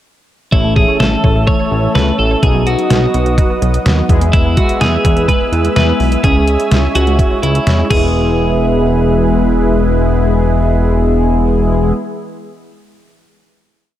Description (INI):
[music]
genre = synth-pop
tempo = 126 BPM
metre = 4/4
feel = straight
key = E major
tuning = A4 = 440 Hz
[part]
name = twelve-string electric guitar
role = melody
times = 0.5-11.9 s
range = E4 to C#5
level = -18 LUFS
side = equal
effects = none
[part]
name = analog synth brass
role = accompaniment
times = 0.5-11.9 s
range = F#3 to A4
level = -17 LUFS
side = left 2 dB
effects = chorus, phaser
[part]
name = sweeping resonant pad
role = sustained chords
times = 0.5-11.9 s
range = E3 to E6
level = -22 LUFS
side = right 2 dB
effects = chorus
[part]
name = resonant blip pluck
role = arpeggios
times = 0.5-12.0 s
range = E3 to E5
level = -23 LUFS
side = right 3 dB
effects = chorus, digital delay
[part]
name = fat analog bass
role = bass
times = 0.5-11.9 s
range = E1 to E2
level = -14 LUFS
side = equal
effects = none
[part]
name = detuned 8-bit digital drum machine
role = drums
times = 0.5-8.0 s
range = crash cymbal, hi-hat, kick drum, snare drum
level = -15 LUFS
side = equal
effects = overdrive
[sound]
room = moderate lush hall reverb, RT60 1.9 s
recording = dark, warm production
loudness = -10 LUFS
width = side -12 dB against mid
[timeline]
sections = 0.5-8.1 pre-chorus; 8.1-12.0 final hit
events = none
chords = 0.5 A; 2.4 B; 4.1 E; 6.2 C#m; 7.9 E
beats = | 0.53 1.00 1.48 1.95 | 2.43 2.91 3.38 3.86 | 4.33 4.81 5.29 5.76 | 6.24 6.71 7.19 7.67 | 8.14 8.62 9.10 9.57 | 10.05 10.53 11.00 11.48